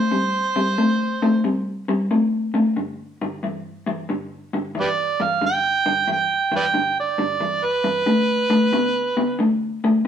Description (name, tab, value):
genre	blues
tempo	90 BPM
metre	4/4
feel	swing 67% on 8ths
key	G major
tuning	A4 = 440 Hz
part	overdriven harmonica	melody	0.0-9.6 s	G4 to G5	-20 LUFS	right 4 dB	none
part	electric guitar through a small old amp	riff	0.0-10.1 s	G2 to B3	-21 LUFS	left 2 dB	none
room	moderate stone room reverb, RT60 0.9 s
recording	band playing live in one room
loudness	-19 LUFS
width	side -8 dB against mid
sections	0.0-10.1 A section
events	none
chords	0.0 C5; 2.8 G5; 8.1 D5